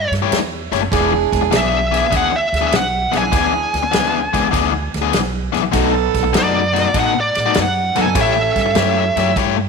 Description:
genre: electric blues shuffle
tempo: 99 BPM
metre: 4/4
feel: swing 68% on 8ths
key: E mixolydian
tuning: A4 = 441 Hz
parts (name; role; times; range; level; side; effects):
- smooth overdriven lead guitar; melody; 0.0-9.4 s; D5 to G#5; -19 LUFS; right 1 dB; tape echo
- upright bass; bass; 0.0-9.7 s; E1 to A2; -22 LUFS; right 2 dB; none
- natural country drum kit; drums; 0.1-9.6 s; kick drum, ride cymbal, snare drum; -22 LUFS; right 2 dB; none
- biting overdriven guitar; riff; 0.2-9.6 s; B2 to C#5; -19 LUFS; left 13 dB; none
- bright horn section; stabs; 0.9-9.2 s; B3 to A4; -21 LUFS; right 13 dB; none
room: light reverb, studio reverb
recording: 1960s-style stereo with parts hard left and right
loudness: -14 LUFS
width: side -4 dB against mid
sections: 0.0-9.7 A section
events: lead electric guitar solo 0.0-9.7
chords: 0.0 A7; 0.9 E7; 5.7 B7; 8.2 A7

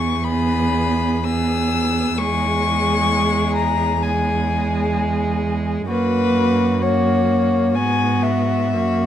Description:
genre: classical, slow romantic movement for string quartet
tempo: 64 BPM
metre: 4/4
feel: rubato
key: unclear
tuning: A4 = 440 Hz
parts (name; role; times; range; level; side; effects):
- dark violin; melody; 0.0-9.1 s; B4 to E6; -22 LUFS; left 7 dB; none
- rich violin; second line; 0.0-9.1 s; F#4 to G#4; -26 LUFS; left 1 dB; none
- rich viola; accompaniment; 0.0-9.1 s; G#3 to B3; -21 LUFS; right 1 dB; none
- rich cello; bass; 0.0-9.1 s; E2 to G#2; -23 LUFS; right 4 dB; none
room: light reverb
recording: dark, warm production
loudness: -16 LUFS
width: side -10 dB against mid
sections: 0.0-9.1 A section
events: none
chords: 0.0 E; 2.2 C#m/E; 5.9 F#; 7.7 G#m7

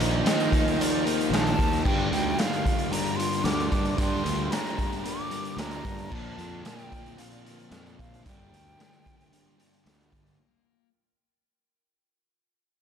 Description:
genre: rock, shoegaze and dream pop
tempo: 112 BPM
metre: 4/4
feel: straight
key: G minor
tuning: A4 = 441 Hz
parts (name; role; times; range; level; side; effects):
- evolving wavetable pad; sustained chords; 0.0-10.4 s; C4 to G5; -36 LUFS; equal; chorus, built-in reverb
- fuzz guitar; riff; 0.0-10.9 s; G2 to Eb4; -34 LUFS; left 10 dB; distortion, wide subtle chorus
- overdriven semi-hollow guitar; riff; 0.0-10.4 s; G2 to Eb4; -33 LUFS; right 10 dB; reverse reverb
- sludgy distorted guitar; riff; 0.0-10.4 s; G2 to Eb4; -34 LUFS; left 2 dB; overdrive
- fuzz fingered electric bass; bass; 0.0-10.4 s; G1 to G2; -30 LUFS; equal; overdrive
- raw garage drum kit; drums; 0.0-10.4 s; crash cymbal, hi-hat, kick drum, snare drum; -29 LUFS; equal; none
- breathy concert flute; melody; 0.3-9.8 s; C5 to D6; -34 LUFS; equal; digital delay
room: light reverb, small room ambience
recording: none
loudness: -24 LUFS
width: side -8 dB against mid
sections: 0.0-10.4 A section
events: fade-out 0.0-10.4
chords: 0.0 Ebsus2; 1.8 Gm7; 6.1 Bbadd9; 8.3 Gm7

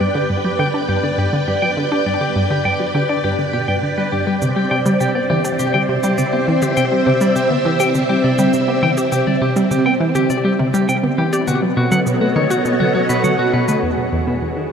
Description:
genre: ambient, sequencer-driven space music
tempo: 102 BPM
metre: 4/4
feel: straight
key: unclear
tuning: A4 = 440 Hz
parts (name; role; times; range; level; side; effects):
- string machine, full ensemble; sustained chords; 0.0-14.7 s; B3 to G5; -18 LUFS; equal; phaser, ensemble chorus
- clean electric guitar; arpeggios; 0.0-14.7 s; E4 to G5; -23 LUFS; moving between left 5 dB and right 1 dB; auto-pan, low-pass filter, tape echo
- analog pluck; riff; 0.0-14.6 s; E2 to G4; -19 LUFS; equal; chorus, tape echo
- electronic toms and cabasa; percussion; 4.4-13.8 s; none; -26 LUFS; left 2 dB; tape echo
room: wet huge ambient reverb, RT60 7.8 s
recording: none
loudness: -14 LUFS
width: side -7 dB against mid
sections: 0.0-13.8 A section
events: filter sweep on synth arpeggio sound 0.0-13.8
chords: 0.0 G; 4.4 Cadd9; 11.5 B7; 13.8 E

